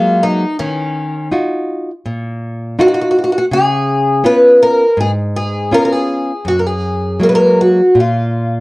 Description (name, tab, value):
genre	fado-style ballad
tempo	81 BPM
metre	4/4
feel	rubato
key	F# major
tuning	A4 = 437 Hz
part	picked twelve-string acoustic guitar	melody	0.0-8.6 s	C#4 to B4	-12 LUFS	equal	none
part	nylon-string guitar	accompaniment	0.0-8.6 s	F#2 to F#4	-16 LUFS	equal	none
room	moderate studio ambience, RT60 0.5 s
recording	worn, warbling old tape, cassette tape, warbly pitch drift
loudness	-11 LUFS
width	side -21 dB against mid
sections	0.0-8.6 A section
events	none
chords	0.0 F#add9; 0.6 D#madd9; 3.5 C#7; 6.5 F#add9; 8.0 A#5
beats	| 0.58 1.31 2.04 2.78 | 3.50 4.24 4.97 5.71 | 6.46 7.21 7.96